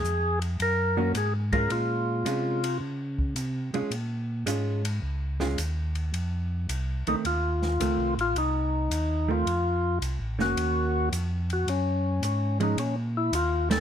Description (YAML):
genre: soul jazz organ trio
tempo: 108 BPM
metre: 4/4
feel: swing 68% on 8ths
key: Bb minor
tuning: A4 = 440 Hz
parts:
  - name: percussive tonewheel organ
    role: melody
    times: 0.0-2.8, 7.1-13.8 s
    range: Db4 to Bb4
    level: -27 LUFS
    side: left 2 dB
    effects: slow rotary speaker
  - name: mellow tonewheel organ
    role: bass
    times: 0.0-13.8 s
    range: F1 to Db3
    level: -28 LUFS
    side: equal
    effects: overdrive, chorus vibrato, slow rotary speaker
  - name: open jazz drum kit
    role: drums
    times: 0.0-13.8 s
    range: hi-hat, kick drum, ride cymbal, snare drum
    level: -36 LUFS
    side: left 1 dB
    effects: none
  - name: hollow-body jazz guitar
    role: accompaniment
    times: 1.0-13.8 s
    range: Eb3 to Gb4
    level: -30 LUFS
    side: right 4 dB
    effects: none
room: light reverb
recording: none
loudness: -25 LUFS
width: side -9 dB against mid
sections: 0.0-13.8 A section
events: band accent 13.6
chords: 0.0 Ebm7 (rootless); 1.7 Bbm7; 6.1 F7; 10.6 Ebm7; 12.8 F7(#5, no3)